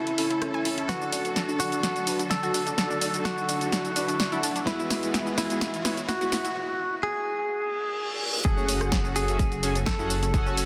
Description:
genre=progressive house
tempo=127 BPM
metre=4/4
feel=straight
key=F# minor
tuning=A4 = 439 Hz
part: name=direct-recorded clean electric guitar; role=melody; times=0.0-10.7 s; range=E4 to A4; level=-32 LUFS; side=equal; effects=vintage 12-bit sampler grit, dub echo
part: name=soft synth bell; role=second line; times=0.0-10.7 s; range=E4 to A4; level=-44 LUFS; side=equal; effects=none
part: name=clear studio string section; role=sustained chords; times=0.0-10.7 s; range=C#3 to G#5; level=-39 LUFS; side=equal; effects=vintage 12-bit sampler grit, sidechain pumping
part: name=analog pluck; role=arpeggios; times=0.0-10.7 s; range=C#4 to G#5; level=-38 LUFS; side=equal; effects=chorus, sidechain pumping, dub echo
part: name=riser and reverse cymbal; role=sound effects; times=0.0-8.4 s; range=none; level=-40 LUFS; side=equal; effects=none
part: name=house drum kit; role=drums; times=0.1-10.7 s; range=hi-hat, rim click, shaker, snare drum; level=-32 LUFS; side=equal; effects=soft clipping on snare
part: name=soft supersaw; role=stabs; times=0.2-10.7 s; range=G#3 to G#5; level=-35 LUFS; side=equal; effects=sidechain pumping, low-pass filter, dub echo
part: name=dark detuned saw bass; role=bass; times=8.4-10.7 s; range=F#1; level=-32 LUFS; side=equal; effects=sidechain pumping
part: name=electronic kick drum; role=drums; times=8.4-10.4 s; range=none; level=-28 LUFS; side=equal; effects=none
room=moderate huge ambient reverb, RT60 4.7 s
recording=dense, heavily limited modern master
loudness=-27 LUFS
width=mono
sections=0.0-8.4 A section; 8.4-10.7 B section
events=build-up 0.0-8.4; filter sweep on supersaw synth 0.0-8.4; drum fill 0.9-6.6; reverse cymbal 7.7-8.4; drop 8.4-10.7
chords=0.0 A; 0.9 D; 4.7 Eadd9; 8.4 F#madd9

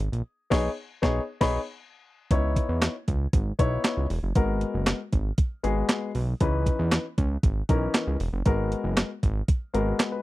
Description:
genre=early-eighties boogie funk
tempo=117 BPM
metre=4/4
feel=straight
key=C# dorian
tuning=A4 = 440 Hz
part: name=fat analog bass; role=bass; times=0.0-9.9 s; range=E1 to E2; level=-27 LUFS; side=right 1 dB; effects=none
part: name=crisp 8-bit digital drum machine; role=drums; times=0.0-10.1 s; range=crash cymbal, handclaps, hi-hat, kick drum, snare drum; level=-24 LUFS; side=right 1 dB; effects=none
part: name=warm concert grand piano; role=accompaniment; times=0.5-10.2 s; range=E3 to B5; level=-28 LUFS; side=left 4 dB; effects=none
room=little or no reverb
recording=dry, close 1970s-style studio recording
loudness=-23 LUFS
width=side -17 dB against mid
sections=0.0-2.3 A section; 2.3-10.2 B section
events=band accent 0.3-2.3; grand piano fill 1.3-2.3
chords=0.0 B69; 2.3 C#m9; 4.4 G#m9; 6.4 C#m9; 8.5 G#m9

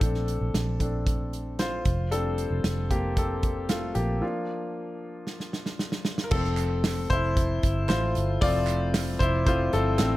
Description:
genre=piano-driven pop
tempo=114 BPM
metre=4/4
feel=straight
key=F major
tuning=A4 = 440 Hz
part: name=clear concert grand piano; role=accompaniment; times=0.0-10.2 s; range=F3 to D5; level=-28 LUFS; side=left 2 dB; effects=none
part: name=vintage muted fingered electric bass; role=bass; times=0.0-10.2 s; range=F1 to Bb1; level=-28 LUFS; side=equal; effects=none
part: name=natural country drum kit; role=drums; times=0.0-10.1 s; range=crash cymbal, hi-hat, kick drum, snare drum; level=-28 LUFS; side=right 1 dB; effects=none
part: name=group handclap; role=percussion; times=6.6-10.1 s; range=none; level=-41 LUFS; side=right 9 dB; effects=none
room=small room ambience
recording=none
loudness=-24 LUFS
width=side -16 dB against mid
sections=0.0-6.3 A section; 6.3-10.2 B section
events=grand piano solo 0.0-6.3, 6.3-10.2; break 4.2-6.3; drum fill 5.3-6.3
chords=0.0 Bbmaj7; 1.9 F6; 4.2 Bb/F; 6.3 F

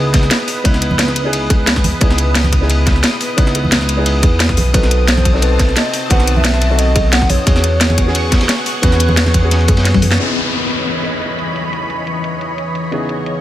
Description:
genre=liquid drum and bass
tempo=176 BPM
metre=4/4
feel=swing 53% on 16ths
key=C# minor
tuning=A4 = 440 Hz
part: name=felt-muted upright piano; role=accompaniment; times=0.0-13.4 s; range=C#3 to B4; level=-21 LUFS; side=equal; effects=ping-pong delay
part: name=lush unison pad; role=sustained chords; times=0.0-13.4 s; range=E3 to D#6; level=-22 LUFS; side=left 1 dB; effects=chorus, phaser
part: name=smooth synth bass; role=bass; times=0.0-10.2 s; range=B1 to F#2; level=-15 LUFS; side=equal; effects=none
part: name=crunchy breakbeat drum kit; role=drums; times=0.1-10.1 s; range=ride cymbal, snare drum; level=-24 LUFS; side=equal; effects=high-pass filter on cymbals, high-pass filter on snare, high-pass filter on room
part: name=drum and bass drum kit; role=drums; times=0.1-13.3 s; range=hi-hat, snare drum, toms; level=-18 LUFS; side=left 1 dB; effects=overdrive, low-pass filter on hats, low-pass filter on snare, low-pass filter on toms
part: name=electronic kick drum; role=drums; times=0.1-10.0 s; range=none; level=-14 LUFS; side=equal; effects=overdrive
part: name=congas and bongos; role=percussion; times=0.9-10.1 s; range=none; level=-24 LUFS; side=right 1 dB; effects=none
part: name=hollow clarinet-like synth lead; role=melody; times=4.7-8.3 s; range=B4 to F#5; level=-21 LUFS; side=equal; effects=chorus, dub echo
part: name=downlifter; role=sound effects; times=10.2-12.9 s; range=none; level=-21 LUFS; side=left 3 dB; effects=none
room=light reverb, small room ambience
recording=none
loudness=-12 LUFS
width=side -13 dB against mid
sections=0.0-10.2 A section; 10.2-13.4 B section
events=drop 0.0-10.2; drum fill 9.9-10.2; band accent 10.1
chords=0.0 C#m9; 4.7 B7b9; 7.5 E69; 10.2 C#m9

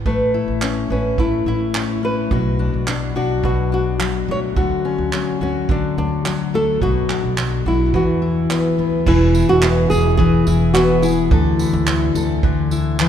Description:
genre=acoustic pop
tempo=107 BPM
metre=4/4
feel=straight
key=unclear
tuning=A4 = 443 Hz
part: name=upright bass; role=bass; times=0.0-13.1 s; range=E1 to E2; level=-21 LUFS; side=right 1 dB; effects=none
part: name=fingerpicked steel-string acoustic guitar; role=accompaniment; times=0.1-13.1 s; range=B2 to B4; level=-19 LUFS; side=left 3 dB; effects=none
part: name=loose indie drum kit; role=drums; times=0.1-13.1 s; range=crash cymbal, handclaps, kick drum, tambourine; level=-23 LUFS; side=right 3 dB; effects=none
part: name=flamenco guitar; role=melody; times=0.6-12.1 s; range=C#4 to C#5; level=-21 LUFS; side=equal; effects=none
room=moderate cathedral reverb, RT60 5.9 s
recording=recorded in a church or concert hall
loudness=-15 LUFS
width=side -9 dB against mid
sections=0.0-9.1 A section; 9.1-13.1 B section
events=none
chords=0.1 Aadd9; 2.3 Bm7; 4.6 Dmaj7; 6.8 Bm; 7.9 Esus2; 9.1 E; 11.3 Dsus2

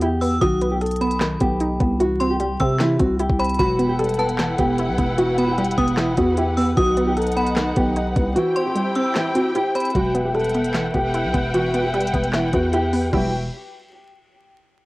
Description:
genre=hip hop, trap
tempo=151 BPM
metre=4/4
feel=half-time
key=E harmonic minor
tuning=A4 = 441 Hz
part: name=nylon-string guitar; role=melody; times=0.0-13.3 s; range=E4 to A4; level=-23 LUFS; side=equal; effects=cassette tape
part: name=warbly dusty pluck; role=accompaniment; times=0.0-13.3 s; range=D#3 to E4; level=-24 LUFS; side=right 1 dB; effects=chorus
part: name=growling 808-style bass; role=bass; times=0.0-13.5 s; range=E1 to C3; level=-24 LUFS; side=equal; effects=none
part: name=trap drum kit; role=drums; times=0.0-13.2 s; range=crash cymbal, handclaps, hi-hat, kick drum, rim click, snare drum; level=-26 LUFS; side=equal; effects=none
part: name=metallic FM bell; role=second line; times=0.2-9.9 s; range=A5 to E6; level=-28 LUFS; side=equal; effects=chorus, tremolo, tape echo
part: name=dark symphonic string section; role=sustained chords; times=3.6-13.3 s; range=D#4 to G5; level=-27 LUFS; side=left 1 dB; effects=none
room=little or no reverb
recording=home recording on cassette, vinyl crackle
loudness=-18 LUFS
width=side -20 dB against mid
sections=0.0-10.0 A section; 10.0-13.1 B section; 13.1-14.7 C section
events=kick muted 8.4-10.0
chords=0.4 B; 2.0 C; 3.6 Emadd9; 6.8 B; 8.4 C; 10.0 Emadd9

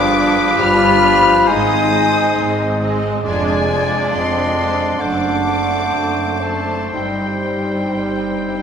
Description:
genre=classical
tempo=58-71 BPM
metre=4/4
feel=rubato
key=unclear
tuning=A4 = 440 Hz
part: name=rich studio violin section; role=melody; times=0.0-8.6 s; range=G5 to F6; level=-24 LUFS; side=left 4 dB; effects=none
part: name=clear oboe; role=second line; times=0.0-8.6 s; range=B4 to D5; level=-22 LUFS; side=left 1 dB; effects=none
part: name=dark clarinet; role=second line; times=0.0-8.6 s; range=D4 to Ab4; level=-26 LUFS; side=right 1 dB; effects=none
part: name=mellow hollow concert flute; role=second line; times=0.0-8.6 s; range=C5 to B5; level=-20 LUFS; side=equal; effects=none
part: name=rich studio violin section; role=second line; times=0.0-8.6 s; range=D4 to Eb5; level=-28 LUFS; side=left 2 dB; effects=none
part: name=mellow bassoon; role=accompaniment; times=0.0-8.6 s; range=F3 to A3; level=-26 LUFS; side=right 1 dB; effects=none
part: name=rich studio viola section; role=accompaniment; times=0.0-8.6 s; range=F3 to D4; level=-25 LUFS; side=right 2 dB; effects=none
part: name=warm French horn section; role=sustained chords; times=0.0-8.6 s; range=G3 to F4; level=-21 LUFS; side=left 3 dB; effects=none
part: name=clear studio double bass section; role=bass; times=0.0-8.6 s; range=F1 to Ab1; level=-26 LUFS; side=right 2 dB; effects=none
part: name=rich studio cello section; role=bass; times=0.0-8.6 s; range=F2 to Ab2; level=-25 LUFS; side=right 3 dB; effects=none
room=wet scoring stage reverb, RT60 1.9 s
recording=recorded in a church or concert hall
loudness=-14 LUFS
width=side -7 dB against mid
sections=0.0-8.6 A section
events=none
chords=0.0 G7; 1.5 Ab; 3.2 Ddim/F; 5.0 D7/F#; 6.9 Cm/G

